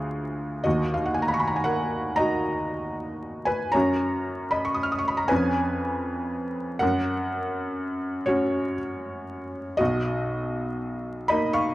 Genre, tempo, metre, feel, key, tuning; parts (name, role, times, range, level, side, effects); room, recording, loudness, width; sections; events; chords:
classical, romantic nocturne for solo piano; 39 BPM (dotted quarters); 6/8; uneven beats, rubato; A4 = 439 Hz
felt-muted upright piano; solo; 0.0-11.7 s; B1 to F6; -24 LUFS; equal
moderate recital hall reverb, RT60 1.3 s; close, detailed microphones, vinyl crackle; -24 LUFS; side -16 dB against mid
0.0-11.7 A section
0.0 Ddim; 0.7 Ebm; 3.7 Gb; 5.3 Db7/F; 6.8 Gb; 9.8 Bmaj7